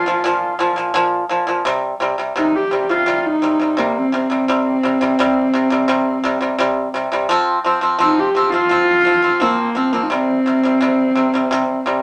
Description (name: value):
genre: mongolian traditional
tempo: 85 BPM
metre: 4/4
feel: straight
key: C yu mode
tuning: A4 = 441 Hz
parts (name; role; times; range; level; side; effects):
- warm horsehead fiddle; melody; 0.0-12.0 s; Bb3 to G4; -19 LUFS; equal; none
- pipa; arpeggios; 0.0-12.0 s; Bb2 to C4; -20 LUFS; equal; none
room: wet studio ambience, RT60 0.5 s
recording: none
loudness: -17 LUFS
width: mono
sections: 0.0-12.0 A section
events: none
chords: 0.0 Bb5; 1.7 C5; 7.3 F5; 10.1 C5